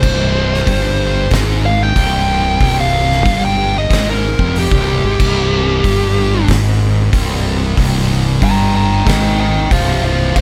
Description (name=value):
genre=stoner and doom metal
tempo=93 BPM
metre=4/4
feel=straight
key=C minor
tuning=A4 = 440 Hz
part: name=fuzz lead guitar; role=melody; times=0.0-10.4 s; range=G4 to Bb5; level=-20 LUFS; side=equal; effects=distortion, digital delay
part: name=thick fuzz guitar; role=riff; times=0.0-10.4 s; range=C2 to Ab2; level=-19 LUFS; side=equal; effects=distortion
part: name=fuzz fingered electric bass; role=bass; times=0.0-10.4 s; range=C1 to Ab1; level=-20 LUFS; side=equal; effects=overdrive, tube saturation
part: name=oversized low-tuned drum kit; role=drums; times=0.0-10.4 s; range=crash cymbal, hi-hat, kick drum, snare drum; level=-20 LUFS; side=equal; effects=none
room=little or no reverb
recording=none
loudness=-14 LUFS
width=mono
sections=0.0-10.4 A section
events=lead electric guitar solo 0.0-10.4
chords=0.0 C5